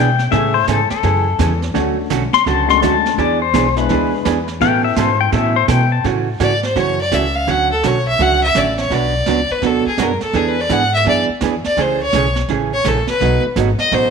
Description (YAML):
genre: country, western swing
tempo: 168 BPM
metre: 4/4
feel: swing 64% on 8ths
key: A major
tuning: A4 = 440 Hz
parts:
  - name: pedal steel guitar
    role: second line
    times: 0.0-6.0 s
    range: A4 to C6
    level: -17 LUFS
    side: left 11 dB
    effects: none
  - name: vintage hollow-body jazz guitar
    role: accompaniment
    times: 0.0-14.1 s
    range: B2 to A4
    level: -19 LUFS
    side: right 10 dB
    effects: none
  - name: upright bass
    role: bass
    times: 0.0-14.1 s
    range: G#1 to B2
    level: -20 LUFS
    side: left 1 dB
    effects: none
  - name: jazz brush drum kit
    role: drums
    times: 0.2-14.1 s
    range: brushed snare drum, hi-hat, kick drum, snare drum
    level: -26 LUFS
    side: right 7 dB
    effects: none
  - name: dark upright piano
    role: accompaniment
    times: 0.3-5.6 s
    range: E3 to A4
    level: -23 LUFS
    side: left 12 dB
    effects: none
  - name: clear fiddle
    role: melody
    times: 6.4-14.1 s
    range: G#4 to F#5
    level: -17 LUFS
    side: left 1 dB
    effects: none
room: moderate echo chamber reverb, RT60 1.7 s, studio ambience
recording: 1960s-style stereo with parts hard left and right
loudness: -13 LUFS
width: side -6 dB against mid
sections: 0.0-6.0 A section; 6.0-14.1 A section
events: pedal steel guitar solo 0.0-6.0; fiddle solo 6.0-14.1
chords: 0.3 Amaj7; 1.8 Dmaj7; 3.2 E7; 4.6 Aadd9; 6.0 A6; 7.5 Dmaj7; 8.9 Bm; 10.3 E7; 11.8 Amaj7; 13.2 B7